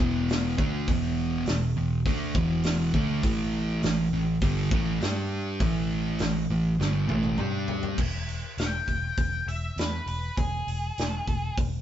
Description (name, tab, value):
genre	blues rock power trio and southern rock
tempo	101 BPM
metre	4/4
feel	straight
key	unclear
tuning	A4 = 440 Hz
part	fuzz guitar	riff	0.0-8.0 s	E2 to G4	-26 LUFS	right 1 dB	distortion
part	vintage muted fingered electric bass	bass	0.0-11.8 s	E1 to G2	-32 LUFS	equal	none
part	big rock drum kit	drums	0.3-11.7 s	crash cymbal, hi-hat, kick drum, snare drum, toms	-29 LUFS	equal	none
part	octave-fuzz lead guitar	melody	8.6-11.5 s	G#4 to G5	-32 LUFS	left 1 dB	distortion
room	light reverb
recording	band playing live in one room, nothing above 7.8 kHz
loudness	-25 LUFS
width	side -10 dB against mid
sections	0.0-8.0 A section; 8.0-11.8 B section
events	drum fill 6.8-8.0; lead electric guitar solo 8.0-11.8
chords	0.0 E5; 3.2 A5; 5.0 G5; 5.6 A5; 7.4 G5; 8.0 E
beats	0.28 | 0.88 1.47 2.06 2.65 | 3.25 3.84 4.43 5.02 | 5.62 6.21 6.80 7.40 | 7.99 8.59 9.19 9.78 | 10.38 10.98 11.58